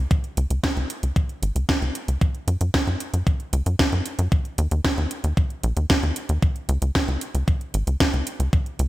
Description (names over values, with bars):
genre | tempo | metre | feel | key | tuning
italo disco | 114 BPM | 4/4 | straight | unclear | A4 = 440 Hz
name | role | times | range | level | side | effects
tight sequencer bass | bass | 0.0-8.9 s | G#1 to F#2 | -22 LUFS | equal | none
electronic kick drum | drums | 0.1-8.6 s | none | -21 LUFS | equal | studio reverb
house drum kit | drums | 0.1-8.9 s | hi-hat, snare drum | -25 LUFS | right 1 dB | studio reverb, gated reverb
room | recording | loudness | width
little or no reverb | none | -21 LUFS | side -16 dB against mid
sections
0.0-8.9 A section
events
none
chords
none